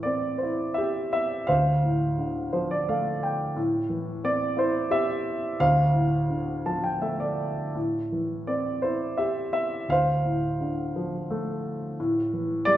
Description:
classical, lyrical solo piano; 81-90 BPM; 3/4; rubato; A minor; A4 = 440 Hz
dark baby grand piano; solo; 0.0-12.8 s; D2 to A5; -24 LUFS; equal
wet recital hall reverb, RT60 1.5 s; recorded in a church or concert hall; -24 LUFS; side -12 dB against mid
0.0-12.8 A section
grand piano fill 2.2-3.6, 6.3-7.8
0.0 Am7; 1.5 Dm7; 3.6 Am7; 5.6 Dm7; 7.8 Am7; 9.9 Dm7; 12.0 A7(no3)

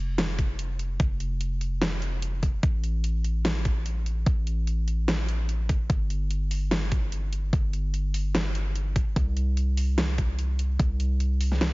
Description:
future bass; 147 BPM; 4/4; swing 54% on 16ths, half-time; A4 = 443 Hz
warm 808-style bass; bass; 0.0-11.7 s; F1 to C2; -26 LUFS; equal; sidechain pumping
dubstep drum kit; drums; 0.2-11.7 s; hi-hat, snare drum; -30 LUFS; equal; overdrive
electronic kick drum; drums; 0.4-10.9 s; -24 LUFS; equal; overdrive
little or no reverb; heavily compressed radio sound, multiband compression, nothing above 7.5 kHz; -24 LUFS; side -23 dB against mid
0.0-11.7 A section

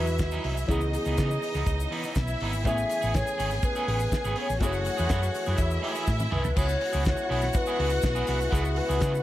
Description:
disco; 122 BPM; 4/4; straight; C# minor; A4 = 440 Hz
mellow hollow alto flute; melody; 0.0-9.2 s; G#4 to E5; -31 LUFS; left 1 dB
warm studio violin section; second line; 0.0-9.2 s; D#4 to G#5; -32 LUFS; equal
electric guitar at the edge of break-up; accompaniment; 0.0-9.2 s; E3 to G#4; -35 LUFS; right 3 dB
warm baby grand piano; accompaniment; 0.0-6.6 s; E3 to G#4; -38 LUFS; left 4 dB
mellow French horn section; sustained chords; 0.0-9.2 s; C#3 to G#4; -37 LUFS; equal
hollow-body short-scale fingered electric bass; bass; 0.0-9.2 s; F#1 to C#3; -28 LUFS; equal
egg shaker; percussion; 0.1-9.2 s; -46 LUFS; left 6 dB
damped 70s drum kit; drums; 0.2-9.1 s; crash cymbal, hi-hat, kick drum, snare drum, toms; -30 LUFS; equal
small room ambience; -24 LUFS; side -14 dB against mid
0.0-6.6 A section; 6.6-9.2 B section
drum fill 6.1-6.6
0.0 Emaj9; 0.7 C#m9; 2.7 Amaj9; 4.6 F#m9; 6.6 C#m7

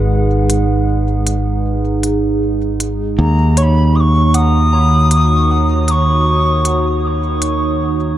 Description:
ambient dub; 78 BPM; 4/4; swing 58% on 16ths; Eb minor; A4 = 437 Hz
warbly tape-like pad; sustained chords; 0.0-8.2 s; Eb3 to Gb5; -18 LUFS; right 3 dB; chorus, built-in reverb
modern bright fingered electric bass; bass; 0.0-8.2 s; Ab1 to Eb2; -14 LUFS; equal
electronic hi-hat; drums; 0.5-7.6 s; -20 LUFS; left 1 dB
wooden flute; melody; 3.2-7.0 s; Bb5 to Eb6; -17 LUFS; left 1 dB; dub echo
soft synth bell; arpeggios; 3.6-8.2 s; Db5 to Bb5; -27 LUFS; right 1 dB; chorus, low-pass filter, dub echo
light reverb; -12 LUFS; side -12 dB against mid
0.0-8.2 A section
0.0 Abm7; 3.2 Ebm7

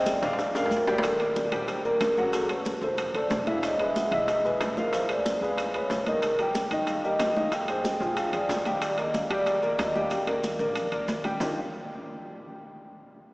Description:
Afro-Cuban jazz; 185 BPM; 4/4; straight; Eb major; A4 = 439 Hz
vibraphone with soft mallets; melody; 0.0-11.6 s; Ab4 to G5; -28 LUFS; equal
warm upright piano; accompaniment; 0.0-11.6 s; Eb3 to G5; -30 LUFS; equal
upright bass; bass; 0.0-11.6 s; Fb1 to G2; -40 LUFS; equal
bongos; percussion; 0.1-11.5 s; -36 LUFS; left 1 dB
congas; percussion; 0.1-11.5 s; -37 LUFS; equal
maracas; percussion; 0.1-11.5 s; -44 LUFS; right 1 dB
timbales; percussion; 0.2-11.5 s; -35 LUFS; right 1 dB
wet cathedral reverb, RT60 5.2 s; recorded in a church or concert hall, small speaker sound; -24 LUFS; side -24 dB against mid
0.0-1.0 A section; 1.0-11.4 B section; 11.4-12.7 C section
vibraphone solo 0.0-1.0; drum fill 0.2-1.0, 10.1-11.4
0.4 Bb6; 1.0 Ebmaj7; 2.3 Gbm; 3.0 F; 3.6 E; 4.9 Dm7b5; 5.6 Db5; 6.2 Cm7; 7.5 Fm9; 8.2 Bb7; 8.8 Ebmaj9

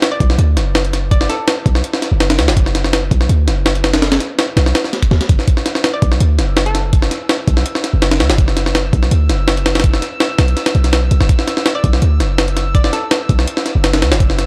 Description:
drum and bass, jungle; 165 BPM; 4/4; straight; B minor; A4 = 442 Hz
jungle sampler-style drum kit; drums; 0.0-14.5 s; hi-hat, kick drum, snare drum; -17 LUFS; equal
hollow square pluck; melody; 0.1-1.8, 5.9-6.9, 11.8-13.4 s; A4 to D5; -28 LUFS; equal; chorus, dub echo
warm 808-style bass; bass; 0.2-14.5 s; F#1 to D2; -17 LUFS; equal
drifting glass-harmonics texture; texture; 6.5-14.5 s; E6; -33 LUFS; equal; chorus, built-in reverb
digital ambience; dry, gritty hardware recording, cassette tape; -14 LUFS; mono
0.0-14.5 A section
0.0 B5

